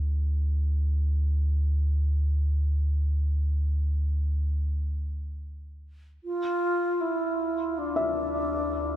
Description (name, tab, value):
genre	ambient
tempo	free time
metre	none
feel	none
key	D minor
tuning	A4 = 438 Hz
part	round analog bass	bass	0.0-9.0 s	D2	-25 LUFS	equal	none
part	mellow wooden-headed alto flute	melody	6.2-9.0 s	D4 to F4	-26 LUFS	equal	tape echo
part	felt-muted upright piano	arpeggios	8.0-9.0 s	E5	-30 LUFS	left 2 dB	tape echo
room	light reverb, studio reverb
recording	none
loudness	-25 LUFS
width	side -12 dB against mid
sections	0.0-6.2 A section; 6.2-9.0 B section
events	none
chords	0.0 N.C.; 6.2 Dmadd9